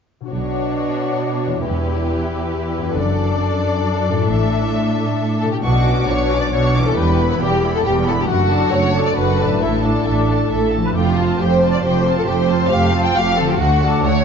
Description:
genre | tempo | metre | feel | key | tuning
cinematic, heroic adventure film score | 136 BPM | 3/4 | straight | unclear | A4 = 442 Hz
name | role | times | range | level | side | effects
concert harp | arpeggios | 0.2-14.2 s | E2 to C#5 | -24 LUFS | left 6 dB | none
warm symphonic violin section | melody | 0.3-14.2 s | B4 to D6 | -27 LUFS | left 4 dB | none
warm symphonic violin section | second line | 0.3-14.2 s | F4 to G5 | -21 LUFS | left 2 dB | none
rich studio viola section | accompaniment | 0.3-14.2 s | G3 to B4 | -23 LUFS | right 1 dB | none
dark symphonic double bass section | bass | 0.3-14.2 s | E1 to D2 | -22 LUFS | right 3 dB | none
rich studio cello section | bass | 0.3-14.2 s | D2 to B2 | -21 LUFS | right 3 dB | none
room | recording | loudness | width
moderate scoring stage reverb, RT60 1.8 s | nothing above 7.5 kHz | -15 LUFS | side -6 dB against mid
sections
0.3-5.6 A section; 5.6-14.2 B section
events
none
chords
0.3 Bmadd9; 1.6 Em; 3.0 D/F#; 4.3 Asus4; 5.6 Bmadd9; 7.0 Em; 8.3 D/F#; 9.6 Asus4; 11.0 Fadd9; 13.6 D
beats
| 0.32 0.76 1.21 | 1.65 2.09 2.53 | 2.97 3.40 3.84 | 4.28 4.72 5.17 | 5.63 6.08 6.52 | 6.96 7.40 7.84 | 8.27 8.71 9.15 | 9.60 10.05 10.50 | 10.95 11.40 11.84 | 12.28 12.72 13.15 | 13.59 14.03

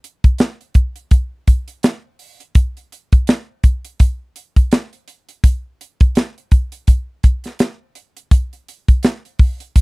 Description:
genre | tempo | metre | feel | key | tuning
soul | 83 BPM | 4/4 | swing 58% on 16ths | none | none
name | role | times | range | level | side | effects
tight funk drum kit | drums | 0.0-9.8 s | hi-hat, kick drum, snare drum | -11 LUFS | equal | none
room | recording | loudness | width
little or no reverb | dry, close 1970s-style studio recording | -14 LUFS | side -29 dB against mid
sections
0.0-9.8 A section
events
none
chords
none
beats
0.39 1.11 1.83 | 2.55 3.27 3.99 4.71 | 5.43 6.15 6.88 7.60 | 8.32 9.04 9.76

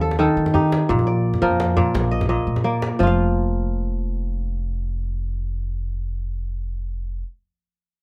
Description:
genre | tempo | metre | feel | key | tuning
west african traditional, West African string and xylophone music | 114 BPM (dotted quarters) | 12/8 | straight | unclear | A4 = 440 Hz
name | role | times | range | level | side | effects
kora | arpeggios | 0.0-7.3 s | Bb2 to F5 | -22 LUFS | equal | none
upright bass | bass | 0.0-7.2 s | F1 to Eb3 | -26 LUFS | equal | none
djembe | percussion | 0.1-3.2 s | none | -29 LUFS | equal | none
room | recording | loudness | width
little or no reverb | dark, warm production | -22 LUFS | mono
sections
0.0-3.0 A section; 3.0-7.2 B section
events
none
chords
0.0 Eb; 0.9 Bb; 3.0 N.C.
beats
0.37 | 0.90 1.42 1.95 2.47 | 3.00 3.52 4.05 4.57 | 5.10 5.63 6.15 6.68

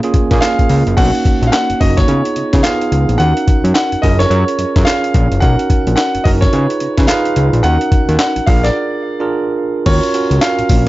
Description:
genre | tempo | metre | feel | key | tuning
R&B, new jack swing | 108 BPM | 4/4 | swing 61% on 16ths | Eb minor | A4 = 441 Hz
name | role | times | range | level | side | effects
bell-like tine electric piano | accompaniment | 0.0-10.9 s | Bb3 to Db5 | -17 LUFS | right 3 dB | none
breakbeat sampler-style drum kit | drums | 0.0-10.9 s | crash cymbal, handclaps, hi-hat, kick drum, snare drum, tambourine | -15 LUFS | equal | none
fat analog bass | bass | 0.1-10.9 s | Gb1 to Db3 | -14 LUFS | equal | none
clear baby grand piano | melody | 0.4-10.9 s | Db5 to F#5 | -18 LUFS | equal | none
group handclap | percussion | 1.5-10.6 s | none | -30 LUFS | left 5 dB | none
room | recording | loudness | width
little or no reverb | dark, warm production, nothing above 7.7 kHz | -11 LUFS | side -17 dB against mid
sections
1.0-9.9 A section; 9.9-10.9 B section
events
break 8.8-9.9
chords
0.0 Bbm7; 1.0 Bmaj7; 2.1 Db7; 3.2 Ebm7; 4.0 Gbmaj7; 5.4 Bmaj7; 6.5 Db7; 7.6 Ebm7; 8.5 Bb7; 9.9 Ebm9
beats
0.42 | 0.98 1.53 2.09 2.64 | 3.20 3.75 4.31 4.87 | 5.42 5.98 6.53 7.09 | 7.64 8.20 8.75 9.31 | 9.87 10.42

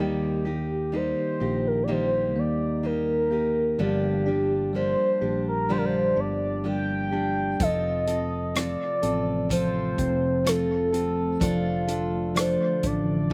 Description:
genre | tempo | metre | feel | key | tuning
pop ballad | 63 BPM | 4/4 | straight | G minor | A4 = 440 Hz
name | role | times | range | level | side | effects
mellow horn-like synth lead | melody | 0.0-13.3 s | F4 to G5 | -29 LUFS | equal | chorus, phaser, slapback echo
bell-like tine electric piano | accompaniment | 0.0-13.3 s | Eb3 to Eb4 | -32 LUFS | equal | slapback echo
fingerpicked steel-string acoustic guitar | arpeggios | 0.0-13.3 s | G2 to A4 | -34 LUFS | equal | none
fretless electric bass | bass | 0.0-13.3 s | F1 to Eb2 | -34 LUFS | equal | none
ethereal airy pad | sustained chords | 9.2-13.3 s | C3 to A3 | -36 LUFS | equal | none
natural country drum kit | drums | 7.6-13.3 s | hi-hat, kick drum, rim click | -32 LUFS | equal | none
room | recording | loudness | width
little or no reverb | recorded outdoors, with no room sound | -25 LUFS | mono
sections
0.0-13.3 A section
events
none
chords
0.0 Eb; 3.8 Gm7; 7.6 F; 11.4 Dm/F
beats
0.93 1.88 2.84 | 3.79 4.74 5.69 6.65 | 7.60 8.55 9.50 10.46 | 11.41 12.36 13.31

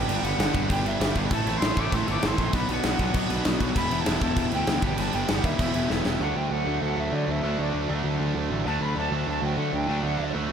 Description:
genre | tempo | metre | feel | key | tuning
punk rock | 196 BPM | 4/4 | straight | unclear | A4 = 440 Hz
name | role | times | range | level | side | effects
mellow alto recorder | melody | 0.0-10.3 s | D5 to D6 | -31 LUFS | equal | none
distorted electric guitar | riff | 0.0-10.5 s | E2 to D4 | -30 LUFS | left 10 dB | distortion
distorted electric guitar | riff | 0.0-10.5 s | A2 to G4 | -30 LUFS | right 12 dB | overdrive
fuzz picked electric bass | bass | 0.0-10.5 s | E1 to D3 | -29 LUFS | equal | overdrive
big rock drum kit | drums | 0.1-6.1 s | crash cymbal, kick drum, snare drum | -27 LUFS | equal | none
room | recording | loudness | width
little or no reverb | none | -23 LUFS | side -8 dB against mid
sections
0.0-6.2 A section; 6.2-10.5 B section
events
drum fill 5.9-6.2; half time 6.2-10.5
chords
0.0 G; 1.3 Am; 2.5 Bm; 3.8 Em; 4.8 G; 5.6 Em; 6.2 D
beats
| 0.08 0.39 0.69 1.00 | 1.31 1.61 1.92 2.23 | 2.53 2.84 3.15 3.45 | 3.76 4.07 4.37 4.68 | 4.99 5.29 5.60 5.91 | 6.21 6.52 6.83 7.13 | 7.44 7.74 8.05 8.36 | 8.66 8.97 9.28 9.58 | 9.89 10.19 10.50

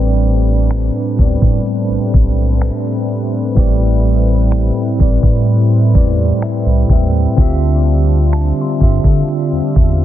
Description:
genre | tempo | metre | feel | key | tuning
contemporary R&B | 63 BPM | 4/4 | straight | A minor | A4 = 438 Hz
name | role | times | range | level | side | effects
mellow tine electric piano | accompaniment | 0.0-10.0 s | A2 to G5 | -16 LUFS | equal | slow stereo tremolo
warm analog pad | sustained chords | 0.0-10.0 s | G3 to E5 | -23 LUFS | left 1 dB | chorus, sidechain pumping
round analog bass | bass | 0.0-10.0 s | A1 to D3 | -14 LUFS | equal | none
trap drum kit | drums | 0.2-10.0 s | finger snaps, hi-hat, kick drum | -12 LUFS | equal | vintage 12-bit sampler grit, soft clipping on snare
soft round pluck | texture | 8.3-10.0 s | A5 to C6 | -34 LUFS | right 1 dB | chorus, tape echo
room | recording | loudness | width
little or no reverb | dense, heavily limited modern master, low-pass filter | -11 LUFS | side -12 dB against mid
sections
0.0-10.0 A section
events
tine electric piano fill 5.5-7.4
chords
0.0 Am11; 7.4 Dm11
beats
0.71 1.66 2.61 | 3.57 4.52 5.47 6.42 | 7.38 8.33 9.28

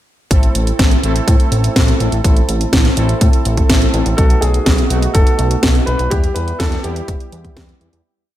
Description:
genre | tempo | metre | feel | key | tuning
italo disco | 124 BPM | 4/4 | straight | A minor | A4 = 444 Hz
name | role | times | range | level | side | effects
analog synth brass | stabs | 0.3-8.0 s | G3 to A4 | -22 LUFS | right 3 dB | chorus, digital delay
fat analog bass | bass | 0.3-8.0 s | E1 to A2 | -17 LUFS | equal | none
electronic kick drum | drums | 0.3-7.7 s | none | -13 LUFS | equal | overdrive
house drum kit | drums | 0.3-8.0 s | hi-hat, snare drum | -18 LUFS | equal | overdrive, gated reverb
dark baby grand piano | melody | 4.2-7.8 s | G4 to B4 | -21 LUFS | equal | digital delay
room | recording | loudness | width
light reverb, digital ambience | bright 1980s-style digital production | -12 LUFS | side -13 dB against mid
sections
0.3-8.1 verse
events
fade-out 5.5-8.1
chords
0.3 Am; 4.2 B7; 6.1 Em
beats
| 0.31 0.79 1.28 1.76 | 2.25 2.73 3.21 3.70 | 4.18 4.66 5.15 5.63 | 6.12 6.60 7.08 7.57

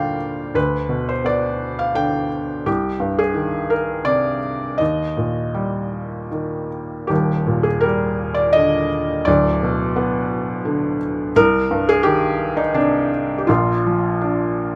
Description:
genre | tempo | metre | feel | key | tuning
classical, lyrical solo piano | 74-88 BPM | 3/4 | rubato | Eb major | A4 = 439 Hz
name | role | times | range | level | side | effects
felt-muted upright piano | solo | 0.0-14.8 s | D1 to G5 | -20 LUFS | equal | none
room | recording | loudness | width
light reverb | none | -20 LUFS | mono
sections
0.0-7.1 A section; 7.1-14.8 A section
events
none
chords
0.0 Ebmaj7; 0.6 G/D; 2.7 Cmadd9; 4.8 Eb; 7.1 Ebmaj7; 9.3 Bm/D; 11.4 Cmadd9; 13.5 Bb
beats
| 0.55 1.26 1.97 | 2.67 3.36 4.07 | 4.80 5.55 6.33 | 7.10 7.84 8.56 | 9.27 9.96 10.66 | 11.36 12.04 12.75 | 13.49 14.22

